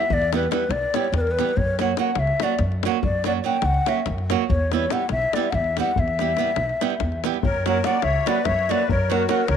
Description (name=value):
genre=balkan folk, Balkan wedding band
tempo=286 BPM (eighths)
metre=7/8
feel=straight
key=unclear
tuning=A4 = 440 Hz
part: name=breathy mellow ney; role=melody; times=0.0-9.6 s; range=A#4 to G5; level=-23 LUFS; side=left 3 dB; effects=none
part: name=flamenco guitar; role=accompaniment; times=0.0-9.4 s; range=F#3 to G4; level=-26 LUFS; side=right 13 dB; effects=none
part: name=upright bass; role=bass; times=0.1-9.6 s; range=B1 to F#2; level=-25 LUFS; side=equal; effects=none
part: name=davul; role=percussion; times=0.1-9.6 s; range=none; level=-28 LUFS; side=left 5 dB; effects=none
part: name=musette accordion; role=second line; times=7.4-9.6 s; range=F#4 to D5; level=-28 LUFS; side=left 9 dB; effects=none
room=moderate spring reverb, RT60 2.5 s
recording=1960s-style stereo with parts hard left and right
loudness=-20 LUFS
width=side -8 dB against mid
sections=0.0-7.4 A section; 7.4-9.6 A section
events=none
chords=0.0 Em; 1.6 F#; 4.5 Em; 7.4 F#